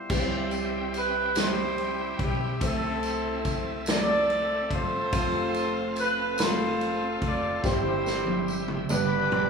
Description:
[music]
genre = slow gospel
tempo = 48 BPM (dotted quarters)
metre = 6/8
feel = straight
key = C major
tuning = A4 = 441 Hz
[part]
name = warm horn section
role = melody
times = 0.0-9.5 s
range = C4 to D5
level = -28 LUFS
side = equal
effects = none
[part]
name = dark concert grand piano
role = accompaniment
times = 0.0-9.5 s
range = G2 to B5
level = -32 LUFS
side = equal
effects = none
[part]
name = bright tonewheel organ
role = sustained chords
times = 0.1-9.5 s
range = C4 to B5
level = -36 LUFS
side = right 2 dB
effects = slow rotary speaker, chorus vibrato
[part]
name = upright bass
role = bass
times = 0.1-9.5 s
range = F1 to C2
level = -37 LUFS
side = right 1 dB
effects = none
[part]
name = swinging big-band drum kit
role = drums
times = 0.1-9.5 s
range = crash cymbal, kick drum, ride cymbal, snare drum, toms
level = -30 LUFS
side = right 1 dB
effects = none
[part]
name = tambourine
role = percussion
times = 0.1-9.3 s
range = none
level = -40 LUFS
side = right 3 dB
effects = none
[sound]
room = wet large studio reverb, RT60 0.9 s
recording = band playing live in one room, studio ambience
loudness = -24 LUFS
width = side -5 dB against mid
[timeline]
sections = 0.1-9.5 A section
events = drum fill 7.6-9.5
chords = 0.1 C; 2.6 Am/C; 5.1 F; 7.6 C/G; 8.9 G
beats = | 0.10 1.36 | 2.61 3.87 | 5.12 6.38 | 7.63 8.89

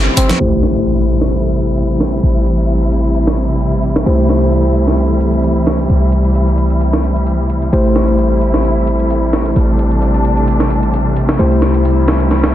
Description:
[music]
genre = breakbeat, breaks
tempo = 131 BPM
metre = 4/4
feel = swing 54% on 16ths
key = A minor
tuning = A4 = 440 Hz
[part]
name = warm symphonic string section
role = sustained chords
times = 0.0-12.5 s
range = C3 to E4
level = -18 LUFS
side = equal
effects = none
[part]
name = warm 808-style bass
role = bass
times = 0.0-12.5 s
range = G1 to C2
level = -15 LUFS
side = equal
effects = none
[part]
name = breakbeat sampler-style drum kit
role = drums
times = 0.2-12.5 s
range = hi-hat, snare drum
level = -20 LUFS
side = right 1 dB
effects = low-pass filter on kick, low-pass filter on hats, low-pass filter on snare, low-pass filter on room
[part]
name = electronic hi-hat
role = drums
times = 0.2-12.4 s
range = none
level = -20 LUFS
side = left 1 dB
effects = none
[part]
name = tine electric piano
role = stabs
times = 0.4-12.5 s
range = A3 to C5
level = -18 LUFS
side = left 1 dB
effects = vintage 12-bit sampler grit, low-pass filter, tape echo
[part]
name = impact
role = sound effects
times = 0.4-2.2 s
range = none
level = -21 LUFS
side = equal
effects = none
[sound]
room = moderate lush hall reverb, RT60 2.0 s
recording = dense, heavily limited modern master, low-pass filter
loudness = -11 LUFS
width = side -12 dB against mid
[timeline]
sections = 0.4-12.5 A section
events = break 0.0-0.4; impact 0.4-2.2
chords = 0.4 Am7; 4.1 C6; 7.7 Am7; 11.4 C6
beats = | 0.40 0.86 1.32 1.77 | 2.23 2.69 3.15 3.61 | 4.07 4.52 4.98 5.44 | 5.90 6.36 6.81 7.27 | 7.73 8.19 8.64 9.10 | 9.56 10.02 10.48 10.94 | 11.39 11.85 12.31

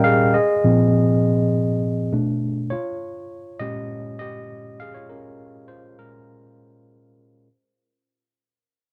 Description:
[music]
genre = soul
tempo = 101 BPM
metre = 4/4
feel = straight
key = Bb dorian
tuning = A4 = 437 Hz
[part]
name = tine electric piano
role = solo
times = 0.0-7.5 s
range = Bb2 to G5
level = -22 LUFS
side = equal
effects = none
[sound]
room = light reverb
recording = dark, warm production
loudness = -20 LUFS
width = mono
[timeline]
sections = 0.0-7.5 A section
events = fade-out 0.0-7.5; tine electric piano solo 0.0-7.5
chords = 0.3 Ab69/Bb; 2.1 Bm7; 2.7 Bbm7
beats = | 0.34 0.94 1.53 2.12 | 2.72 3.31 3.91 4.50 | 5.09 5.69 6.28 6.88

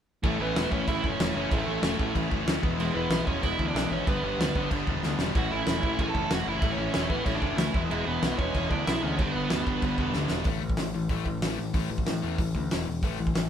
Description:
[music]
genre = punk rock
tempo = 188 BPM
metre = 4/4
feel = straight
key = A major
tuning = A4 = 440 Hz
[part]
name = smooth overdriven lead guitar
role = melody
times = 0.2-10.1 s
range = G#3 to A5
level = -31 LUFS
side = right 4 dB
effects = none
[part]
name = overdriven semi-hollow guitar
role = riff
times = 0.2-13.5 s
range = E2 to A3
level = -31 LUFS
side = left 6 dB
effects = none
[part]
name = thick fuzz guitar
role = riff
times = 0.2-10.4 s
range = G2 to E4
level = -36 LUFS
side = equal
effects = none
[part]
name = tight distorted guitar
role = riff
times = 0.2-10.5 s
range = G2 to E4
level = -35 LUFS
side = right 6 dB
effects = distortion
[part]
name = growling picked electric bass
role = bass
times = 0.2-13.5 s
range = E1 to A2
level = -34 LUFS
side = equal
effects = overdrive
[part]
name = loose indie drum kit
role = drums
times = 0.2-13.4 s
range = crash cymbal, hi-hat, kick drum, snare drum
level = -29 LUFS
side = equal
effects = none
[sound]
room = moderate studio reverb, RT60 0.7 s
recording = band playing live in one room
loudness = -25 LUFS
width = side -9 dB against mid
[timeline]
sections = 0.2-10.5 A section; 10.5-13.5 B section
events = drum fill 5.0-5.3, 10.1-10.5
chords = 0.2 A; 2.6 E; 4.1 G; 5.3 A; 7.7 E; 9.2 G; 10.5 A5; 12.7 E5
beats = | 0.24 0.56 0.88 1.20 | 1.51 1.83 2.15 2.47 | 2.79 3.11 3.43 3.75 | 4.07 4.39 4.71 5.03 | 5.34 5.67 5.98 6.30 | 6.62 6.94 7.26 7.58 | 7.90 8.22 8.54 8.86 | 9.18 9.50 9.82 10.14 | 10.46 10.78 11.10 11.42 | 11.74 12.06 12.38 12.70 | 13.02 13.35

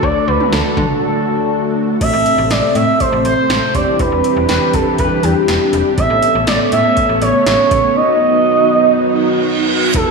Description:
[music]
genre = synth-pop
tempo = 121 BPM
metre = 4/4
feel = straight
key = unclear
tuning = A4 = 440 Hz
[part]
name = expressive portamento lead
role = melody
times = 0.0-10.1 s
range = G4 to E5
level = -14 LUFS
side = right 1 dB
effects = chorus, diffuse ambient delay
[part]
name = mellow synth brass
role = accompaniment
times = 0.0-10.1 s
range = A3 to B4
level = -19 LUFS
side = equal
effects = chorus
[part]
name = string machine, cellos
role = sustained chords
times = 0.0-10.1 s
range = C3 to B4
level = -19 LUFS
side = right 1 dB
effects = ensemble chorus
[part]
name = slap-like FM bass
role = bass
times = 0.0-10.0 s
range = E1 to D3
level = -20 LUFS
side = equal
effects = none
[part]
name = electro analog drum machine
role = drums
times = 0.0-10.1 s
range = crash cymbal, hi-hat, kick drum, snare drum, toms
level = -21 LUFS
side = equal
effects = overdrive
[part]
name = reverse cymbal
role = sound effects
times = 9.2-9.9 s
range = none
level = -19 LUFS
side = right 4 dB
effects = none
[sound]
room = wet lush hall reverb, RT60 1.7 s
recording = dreamy mix soaked in reverb, studio reverb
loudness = -11 LUFS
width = side -4 dB against mid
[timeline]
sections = 0.0-2.0 A section; 2.0-9.9 B section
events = break 1.0-2.0; reverse cymbal 9.2-9.9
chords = 0.0 D; 2.0 Am; 3.7 Em7; 6.0 Aadd9; 8.0 B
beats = | 0.03 0.52 1.02 1.51 | 2.01 2.51 3.00 3.50 | 3.99 4.49 4.99 5.48 | 5.98 6.47 6.97 7.46 | 7.96 8.46 8.95 9.45 | 9.95

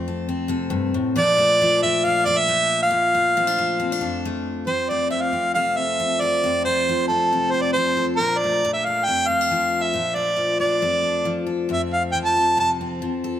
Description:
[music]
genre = highlife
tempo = 137 BPM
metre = 4/4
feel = swing 53% on 16ths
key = F major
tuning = A4 = 440 Hz
[part]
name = picked steel-string acoustic guitar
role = accompaniment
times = 0.0-13.4 s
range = F2 to A4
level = -25 LUFS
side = left 3 dB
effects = none
[part]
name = warm harmonica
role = melody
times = 1.2-12.7 s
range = A4 to A5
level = -19 LUFS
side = right 1 dB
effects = none
[sound]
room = moderate plate reverb, RT60 2.7 s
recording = none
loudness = -18 LUFS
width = side -10 dB against mid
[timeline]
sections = 0.0-4.7 A section; 4.7-13.4 B section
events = none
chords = 0.0 F; 1.2 Bbmaj7; 4.7 F; 8.2 Bbmaj7; 11.7 F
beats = 0.30 0.74 | 1.18 1.62 2.06 2.49 | 2.93 3.37 3.81 4.25 | 4.69 5.12 5.56 6.00 | 6.44 6.88 7.32 7.76 | 8.20 8.64 9.08 9.52 | 9.96 10.40 10.84 11.27 | 11.71 12.15 12.59 13.03

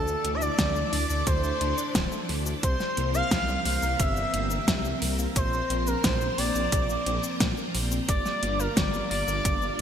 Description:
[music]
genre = synthwave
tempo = 88 BPM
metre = 4/4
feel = straight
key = D minor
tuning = A4 = 440 Hz
[part]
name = expressive portamento lead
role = melody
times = 0.0-9.8 s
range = A4 to F5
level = -30 LUFS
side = equal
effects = chorus, ping-pong delay
[part]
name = airy dreamy lead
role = second line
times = 0.0-9.8 s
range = A4 to F5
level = -36 LUFS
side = equal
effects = chorus, cassette tape
[part]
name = string machine, full ensemble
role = sustained chords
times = 0.0-9.8 s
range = E3 to D5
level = -34 LUFS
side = equal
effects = ensemble chorus, sidechain pumping
[part]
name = warbly dusty pluck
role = arpeggios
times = 0.0-9.8 s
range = C3 to D4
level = -38 LUFS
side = left 3 dB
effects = chorus, vintage 12-bit sampler grit, ping-pong delay
[part]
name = dark detuned saw bass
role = bass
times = 0.0-9.8 s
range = D1 to Bb2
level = -30 LUFS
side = equal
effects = none
[part]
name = pop drum kit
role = drums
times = 0.1-9.8 s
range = hi-hat, shaker, snare drum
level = -29 LUFS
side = equal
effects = overdrive, gated reverb
[part]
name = electronic kick drum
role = drums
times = 0.6-9.6 s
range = none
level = -28 LUFS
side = equal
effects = overdrive
[sound]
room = moderate lush hall reverb, RT60 2.8 s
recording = bright 1980s-style digital production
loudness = -24 LUFS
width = side -8 dB against mid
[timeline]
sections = 0.0-9.8 A section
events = none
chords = 0.0 Dsus2; 2.6 C7; 5.4 Bbsus2; 8.1 Gm7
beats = 0.59 1.27 1.95 | 2.63 3.31 4.00 4.68 | 5.36 6.04 6.72 7.40 | 8.09 8.77 9.45

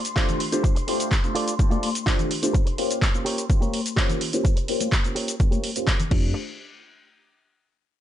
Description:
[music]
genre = filtered disco house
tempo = 126 BPM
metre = 4/4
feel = straight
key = unclear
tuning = A4 = 440 Hz
[part]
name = phased string machine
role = sustained chords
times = 0.0-6.1 s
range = C6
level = -36 LUFS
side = left 1 dB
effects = ensemble chorus, phaser, vintage 12-bit sampler grit, sidechain pumping, low-pass filter
[part]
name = punchy analog drum machine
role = drums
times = 0.0-6.2 s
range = cabasa, crash cymbal, handclaps, hi-hat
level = -28 LUFS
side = equal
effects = sidechain pumping on hats, sidechain pumping on perc, sidechain pumping on cymbals
[part]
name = tube shaker and congas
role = percussion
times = 0.1-6.3 s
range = none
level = -32 LUFS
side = left 4 dB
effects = sidechain pumping on perc, low-pass filter on perc
[part]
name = clear grand piano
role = accompaniment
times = 0.2-6.3 s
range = A3 to C5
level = -28 LUFS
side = left 1 dB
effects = phaser, sidechain pumping, low-pass filter
[part]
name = direct-recorded clean electric guitar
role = riff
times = 0.2-6.3 s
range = F4 to D5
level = -33 LUFS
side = right 2 dB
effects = vintage 12-bit sampler grit, sidechain pumping, low-pass filter
[part]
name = electronic kick drum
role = drums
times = 0.2-6.2 s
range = none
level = -21 LUFS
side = equal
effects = none
[part]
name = plucky analog bass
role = bass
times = 6.1-6.3 s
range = F2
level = -26 LUFS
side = equal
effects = sidechain pumping, low-pass filter
[sound]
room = little or no reverb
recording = nothing above 10.5 kHz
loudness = -21 LUFS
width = side -12 dB against mid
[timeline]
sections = 0.0-6.4 A section; 6.4-8.0 B section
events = filter sweep 0.0-6.4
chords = 0.0 F6; 2.5 Bbm6; 6.1 F6; 6.4 N.C.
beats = 0.16 | 0.64 1.11 1.59 2.07 | 2.54 3.02 3.50 3.97 | 4.45 4.92 5.40 5.88

